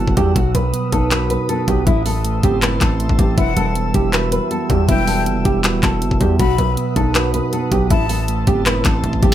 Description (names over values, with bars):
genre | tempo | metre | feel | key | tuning
hip hop, trap | 159 BPM | 4/4 | half-time | E harmonic minor | A4 = 440 Hz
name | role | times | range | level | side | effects
nylon-string guitar | melody | 0.0-9.3 s | E4 to B4 | -20 LUFS | equal | low-pass filter
mellow tine electric piano | accompaniment | 0.0-9.3 s | A2 to F#4 | -21 LUFS | right 4 dB | low-pass filter
glassy FM pad | sustained chords | 0.0-9.3 s | G3 to E6 | -29 LUFS | equal | ensemble chorus, built-in reverb
distorted 808-style bass | bass | 0.0-9.3 s | D#1 to E2 | -20 LUFS | equal | distortion
trap drum kit | drums | 0.1-9.3 s | handclaps, hi-hat, kick drum, snare drum | -19 LUFS | equal | none
breathy jazz flute | second line | 3.4-8.3 s | F#5 to B5 | -26 LUFS | left 6 dB | ping-pong delay
room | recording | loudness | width
light reverb | none | -14 LUFS | side -12 dB against mid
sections
0.0-9.3 A section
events
drum fill 9.0-9.3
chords
0.4 B; 1.9 Am; 3.4 Emadd9; 6.4 B; 7.9 Am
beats
| 0.36 0.73 1.11 1.49 | 1.87 2.25 2.62 3.00 | 3.38 3.75 4.13 4.51 | 4.89 5.26 5.64 6.02 | 6.40 6.77 7.15 7.53 | 7.91 8.28 8.66 9.04